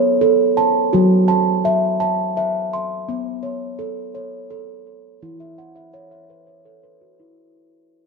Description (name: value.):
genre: world meditative, meditative tuned percussion.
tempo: 56 BPM (dotted quarters).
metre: 6/8.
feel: straight.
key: unclear.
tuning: A4 = 440 Hz.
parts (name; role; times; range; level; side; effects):
steel tongue drum; solo; 0.0-7.5 s; E3 to B#5; -17 LUFS; right 2 dB; ping-pong delay.
room: moderate concert hall reverb, RT60 2.3 s.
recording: dark, warm production.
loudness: -16 LUFS.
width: side -4 dB against mid.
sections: 0.0-7.4 A section.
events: fade-out 0.0-7.4; steel tongue drum fill 5.4-7.4.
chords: 0.0 A; 0.9 F#m; 3.1 Aadd9/B; 5.2 A69/E.